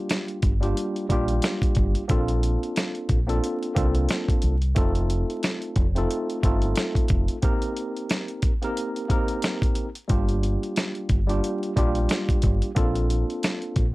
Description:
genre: hip hop, boom-bap hip-hop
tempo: 90 BPM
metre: 4/4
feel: swing 58% on 16ths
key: G minor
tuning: A4 = 440 Hz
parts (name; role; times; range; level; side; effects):
- tine electric piano; accompaniment; 0.0-13.9 s; G3 to Bb4; -27 LUFS; equal; fast stereo tremolo, high-pass filter, low-pass filter
- dusty soul sampler-style drum kit; drums; 0.1-13.9 s; hi-hat, kick drum, snare drum; -24 LUFS; equal; none
- deep dub fingered electric bass; bass; 0.4-13.9 s; F1 to C2; -24 LUFS; equal; none
room: little or no reverb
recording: dry, gritty hardware recording, vinyl crackle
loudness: -22 LUFS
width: side -20 dB against mid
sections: 0.0-13.9 A section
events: break 7.4-10.1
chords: 0.0 Gm7; 2.1 Bbmaj9; 4.8 F7; 7.4 Cm7; 10.1 Gm7; 12.8 Bbmaj9

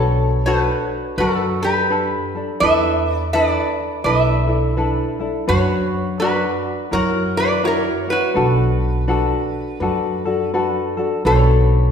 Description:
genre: Hawaiian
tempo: 84 BPM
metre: 4/4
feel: swing 61% on 8ths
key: B minor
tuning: A4 = 440 Hz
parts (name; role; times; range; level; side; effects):
- metal-body resonator slide guitar; melody; 0.0-11.9 s; F#4 to E5; -20 LUFS; equal; none
- tenor ukulele; accompaniment; 0.0-11.9 s; D4 to D5; -21 LUFS; left 2 dB; none
- upright bass; bass; 0.0-11.9 s; B1 to F#2; -20 LUFS; equal; none
room: wet recital hall reverb, RT60 1.7 s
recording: recorded in a church or concert hall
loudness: -16 LUFS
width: side -7 dB against mid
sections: 0.0-11.2 A section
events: none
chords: 0.0 Bm7; 2.6 E7sus4; 5.5 Bm/F#; 6.9 F#7; 8.4 Bm7

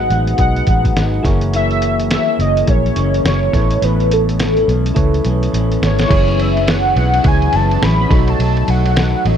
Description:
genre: indie pop, bedroom pop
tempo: 105 BPM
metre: 4/4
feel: swing 60% on 16ths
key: unclear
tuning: A4 = 440 Hz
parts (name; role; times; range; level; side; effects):
- warm velvety synth lead; melody; 0.0-9.4 s; A4 to B5; -18 LUFS; equal; analog chorus, tape echo
- electric guitar through a small old amp; accompaniment; 0.0-9.4 s; F#2 to D#4; -21 LUFS; left 2 dB; lush chorus, warbly pitch drift
- soft electric-piano-like synth keys; accompaniment; 0.0-9.4 s; D#4 to D#5; -24 LUFS; right 4 dB; chorus, tremolo, cassette tape
- vintage muted fingered electric bass; bass; 0.0-9.4 s; F#1 to C#2; -16 LUFS; equal; none
- lo-fi sampler-style drum kit; drums; 0.1-9.4 s; crash cymbal, hi-hat, kick drum, ride cymbal, snare drum; -18 LUFS; equal; none
room: little or no reverb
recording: dry, close 1970s-style studio recording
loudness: -12 LUFS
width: side -8 dB against mid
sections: 0.0-6.1 A section; 6.1-9.4 B section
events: drum fill 5.0-6.1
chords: 0.0 G#m7; 1.2 F#7; 3.5 Aadd9; 6.1 F#7sus4; 8.1 B7

